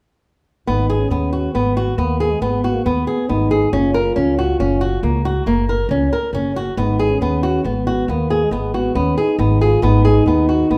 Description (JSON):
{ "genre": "contemporary instrumental, contemporary", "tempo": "138 BPM", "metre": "7/4", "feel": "straight", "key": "G# minor", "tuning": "A4 = 442 Hz", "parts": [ { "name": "dark French horn", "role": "melody", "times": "0.7-10.8 s", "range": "G#3 to E#4", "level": "-23 LUFS", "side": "equal", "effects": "none" }, { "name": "flamenco guitar", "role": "arpeggios", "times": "0.7-10.8 s", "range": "A#3 to A#4", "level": "-21 LUFS", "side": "equal", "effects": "none" }, { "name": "upright bass", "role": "bass", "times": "0.7-10.8 s", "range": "F#1 to D#2", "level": "-22 LUFS", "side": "equal", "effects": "none" } ], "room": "moderate recital hall reverb, RT60 1.7 s", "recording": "none", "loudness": "-17 LUFS", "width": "mono", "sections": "0.7-10.8 A section", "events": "none", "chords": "0.7 G#m7; 3.7 F#maj7; 6.8 G#m7", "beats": "| 0.67 1.11 1.54 1.98 2.42 2.85 3.29 | 3.73 4.16 4.60 5.03 5.47 5.91 6.34 | 6.78 7.21 7.65 8.09 8.52 8.96 9.40 | 9.83 10.27 10.70" }